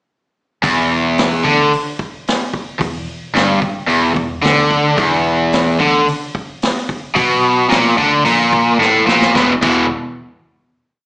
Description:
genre	blues rock power trio and southern rock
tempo	110 BPM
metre	4/4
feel	straight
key	E minor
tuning	A4 = 440 Hz
part	cranked stack guitar	riff	0.6-9.8 s	E2 to E3	-12 LUFS	equal	overdrive, slapback echo
part	vintage muted fingered electric bass	bass	0.6-9.9 s	E1 to D2	-27 LUFS	equal	none
part	vintage drum kit	drums	0.6-9.8 s	crash cymbal, hi-hat, kick drum, snare drum	-20 LUFS	equal	none
room	light reverb, small room ambience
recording	live gig heard through the venue's PA, club reverb, small speaker sound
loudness	-12 LUFS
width	side -24 dB against mid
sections	0.6-9.3 riff; 9.3-11.1 final chord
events	drum fill 8.8-9.3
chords	0.6 E5

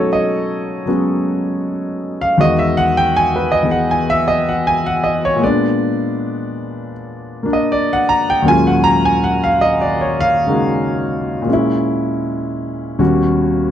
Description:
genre	solo jazz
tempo	79 BPM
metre	4/4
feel	swing 68% on 8ths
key	Eb minor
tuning	A4 = 440 Hz
part	warm concert grand piano	solo	0.0-13.7 s	Eb2 to Bb5	-14 LUFS	equal	none
room	light reverb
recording	dark, warm production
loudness	-14 LUFS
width	side -10 dB against mid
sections	0.0-13.7 A section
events	grand piano solo 0.0-13.7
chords	0.0 B13; 2.4 Emaj9; 5.4 Bb7b9; 8.5 Ebm11; 11.5 Bbm7b5; 13.0 Eb7alt

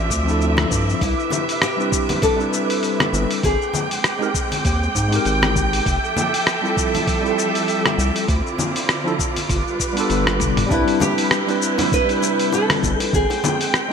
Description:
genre	sunset chillout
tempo	99 BPM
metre	4/4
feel	swing 57% on 16ths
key	C major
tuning	A4 = 441 Hz
part	warm symphonic string section	sustained chords	0.0-13.9 s	C3 to G5	-24 LUFS	right 2 dB	none
part	round analog bass	bass	0.0-13.3 s	F1 to Ab2	-22 LUFS	equal	none
part	wind-like tuned noise texture	texture	0.0-13.9 s	D6 to G6	-30 LUFS	right 3 dB	built-in reverb, analog chorus
part	dusty soul sampler-style drum kit	drums	0.1-13.9 s	hi-hat, rim click, shaker, toms	-23 LUFS	left 1 dB	none
part	electronic kick drum	drums	0.1-13.3 s	none	-24 LUFS	equal	none
part	bright tine electric piano	accompaniment	0.2-13.9 s	F3 to B4	-24 LUFS	moving between left 5 dB and right 5 dB	medium stereo tremolo, auto-pan, ping-pong delay
part	congas and bongos	percussion	0.6-13.9 s	none	-28 LUFS	left 4 dB	none
part	nylon-string guitar	melody	1.0-4.0, 10.7-13.9 s	E4 to B4	-23 LUFS	equal	lush chorus, digital delay
room	moderate plate reverb, RT60 3.4 s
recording	bright 1980s-style digital production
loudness	-17 LUFS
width	side -6 dB against mid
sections	0.0-10.7 A section; 10.7-13.9 B section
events	drum fill 10.4-10.7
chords	0.0 Dm9; 1.0 Cmaj7; 3.4 Abmaj9; 5.9 Fmaj9; 8.3 Dm9; 9.5 G7; 10.7 Cmaj7; 13.1 Abmaj7

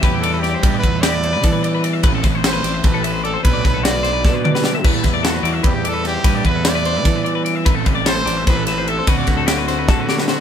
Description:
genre	math rock and midwest emo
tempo	298 BPM (eighths)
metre	7/8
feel	straight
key	unclear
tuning	A4 = 440 Hz
part	brilliant trumpet	melody	0.0-10.4 s	F#4 to D5	-23 LUFS	right 2 dB	none
part	electric guitar through a small old amp	accompaniment	0.0-0.6 s	E4	-34 LUFS	right 7 dB	none
part	twelve-string electric guitar	arpeggios	0.0-10.4 s	F#4 to E5	-23 LUFS	left 8 dB	none
part	crunchy overdriven guitar	riff	0.0-10.4 s	A2 to F#4	-25 LUFS	equal	none
part	fuzz fingered electric bass	bass	0.0-10.4 s	A1 to E3	-22 LUFS	equal	overdrive
part	crisp fusion drum kit	drums	0.0-10.4 s	crash cymbal, kick drum, ride cymbal, snare drum, toms	-18 LUFS	equal	none
room	light reverb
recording	band playing live in one room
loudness	-14 LUFS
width	side -8 dB against mid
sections	0.0-10.4 A section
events	drum fill 4.3-4.9, 9.9-10.4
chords	0.0 Em7; 2.0 Am; 3.4 Bm7; 4.9 Em7; 7.7 Am; 9.1 D7

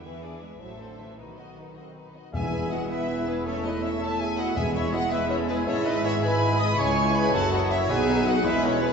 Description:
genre	quick classical-period movement for symphony orchestra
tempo	108 BPM (dotted quarters)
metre	6/8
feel	straight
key	E major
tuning	A4 = 442 Hz
part	clear studio violin section	melody	0.0-8.9 s	F#4 to D#6	-33 LUFS	left 2 dB	none
part	clear studio violin section	second line	0.0-8.9 s	B3 to E5	-35 LUFS	left 3 dB	none
part	clear studio viola section	accompaniment	0.0-8.9 s	A3 to D#5	-33 LUFS	equal	none
part	clear studio cello section	bass	0.0-8.9 s	E2 to G#3	-32 LUFS	right 2 dB	none
part	rich studio double bass section	bass	0.0-8.9 s	E1 to E2	-33 LUFS	right 2 dB	none
part	clear oboe	second line	2.3-8.9 s	B4 to E5	-36 LUFS	left 2 dB	none
part	concert flute	second line	2.3-8.9 s	B4 to D#6	-32 LUFS	equal	none
part	warm clarinet	second line	2.3-8.8 s	D#4 to E4	-33 LUFS	equal	none
part	mellow bassoon	accompaniment	2.3-8.9 s	F#3 to B3	-34 LUFS	right 1 dB	none
part	mellow French horn section	sustained chords	2.3-8.9 s	F#3 to E4	-32 LUFS	equal	none
part	bright trumpet section	stabs	2.3-8.9 s	G#4 to B5	-32 LUFS	equal	none
part	timpani	percussion	2.3-5.1, 7.9-8.4 s	E2 to B2	-33 LUFS	left 1 dB	none
room	wet scoring stage reverb, RT60 1.4 s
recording	heard from further back in the room, nothing above 7.8 kHz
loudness	-22 LUFS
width	side -6 dB against mid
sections	0.0-2.3 A section; 2.3-8.9 A section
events	none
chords	0.0 E7; 0.6 Am; 1.2 B; 2.3 E; 3.5 A/E; 5.7 E/G#; 6.8 C#m; 7.3 F#m7; 7.9 B

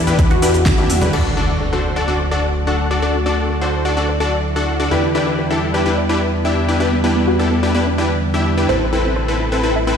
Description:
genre	progressive house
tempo	127 BPM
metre	4/4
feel	straight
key	unclear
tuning	A4 = 439 Hz
part	tight sequenced synth	arpeggios	0.0-10.0 s	B3 to E5	-24 LUFS	right 1 dB	chorus, phaser, sidechain pumping, tape echo
part	supersaw stab	stabs	0.0-10.0 s	C4 to F#5	-18 LUFS	left 2 dB	cassette tape, sidechain pumping, tape echo
part	fat analog bass	bass	0.0-10.0 s	A1 to E2	-21 LUFS	equal	sidechain pumping
part	deep house drum kit	drums	0.1-1.2 s	crash cymbal, hi-hat, shaker, snare drum, toms	-24 LUFS	equal	overdrive, sidechain pumping on hats, studio reverb, sidechain pumping on perc, sidechain pumping on toms, sidechain pumping on cymbals
part	bongos and congas	percussion	0.1-1.1 s	none	-28 LUFS	left 2 dB	none
part	electronic kick drum	drums	0.2-0.8 s	none	-16 LUFS	equal	overdrive, studio reverb
part	evolving wavetable pad	sustained chords	1.8-10.0 s	C3 to B4	-22 LUFS	equal	chorus, built-in reverb, sidechain pumping
part	impact	sound effects	1.1-3.0 s	none	-24 LUFS	equal	none
room	light reverb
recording	played on a big sound system in a bare room, stone room reverb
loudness	-15 LUFS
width	side -7 dB against mid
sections	0.0-1.1 A section; 1.1-10.0 B section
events	filter sweep on synth arpeggio sound 0.0-1.1; drum fill 0.7-1.1; impact 1.1-3.0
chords	0.0 Em7; 1.1 D; 4.9 Em7; 8.7 Amadd9

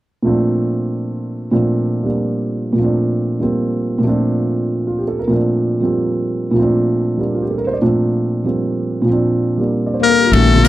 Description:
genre	modal jazz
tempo	190 BPM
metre	4/4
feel	swing 63% on 8ths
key	Bb major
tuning	A4 = 444 Hz
part	dark grand piano	accompaniment	0.2-10.7 s	Bb2 to D5	-15 LUFS	right 1 dB	none
part	trumpet with metal mute	melody	10.0-10.7 s	A4 to Bb4	-14 LUFS	left 2 dB	none
part	breathy tenor saxophone	second line	10.0-10.7 s	A3 to Bb3	-16 LUFS	left 12 dB	none
part	upright bass	bass	10.3-10.7 s	Bb1	-11 LUFS	left 2 dB	none
part	swinging big-band drum kit	drums	10.3-10.7 s	hi-hat, ride cymbal	-22 LUFS	left 2 dB	none
room	small room ambience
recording	dry, close 1970s-style studio recording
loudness	-15 LUFS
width	side -15 dB against mid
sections	0.2-10.3 A section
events	none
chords	0.2 Bbmaj9

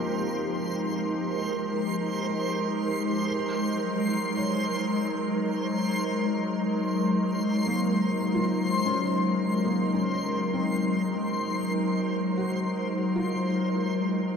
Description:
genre	ambient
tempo	free time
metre	none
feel	none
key	unclear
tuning	A4 = 445 Hz
part	glassy FM pad	sustained chords	0.0-14.4 s	F3 to Bb4	-26 LUFS	left 1 dB	ensemble chorus, built-in reverb
part	felt-muted upright piano	arpeggios	0.0-14.4 s	Bb3 to Db5	-37 LUFS	equal	ping-pong delay
part	backwards swelling texture	texture	0.0-14.4 s	C5 to C6	-33 LUFS	equal	built-in reverb
room	wet huge ambient reverb, RT60 8.2 s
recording	none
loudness	-25 LUFS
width	side -6 dB against mid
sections	0.0-14.4 A section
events	fade-in on synth texture 0.0-14.4; fade-out on felt piano 0.0-14.4; filter sweep on ambient pad 0.0-14.4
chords	0.0 Fm11; 3.3 Gb69

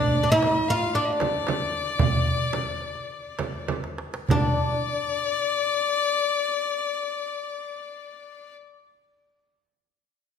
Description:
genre	Arabic maqam ensemble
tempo	96-120 BPM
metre	4/4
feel	straight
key	unclear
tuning	A4 = 439 Hz
part	oud	melody	0.0-8.6 s	D4 to F4	-23 LUFS	equal	none
part	rich violin	second line	0.0-8.5 s	D5 to F5	-27 LUFS	left 6 dB	none
part	darbuka	percussion	0.3-4.6 s	none	-28 LUFS	right 3 dB	none
part	frame drum	percussion	0.4-4.6 s	none	-28 LUFS	right 3 dB	none
room	wet recital hall reverb, RT60 1.7 s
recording	none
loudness	-23 LUFS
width	side -7 dB against mid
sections	0.0-4.3 A section; 4.3-9.3 B section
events	slowing down 0.0-4.3; drum fill 3.7-4.3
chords	none

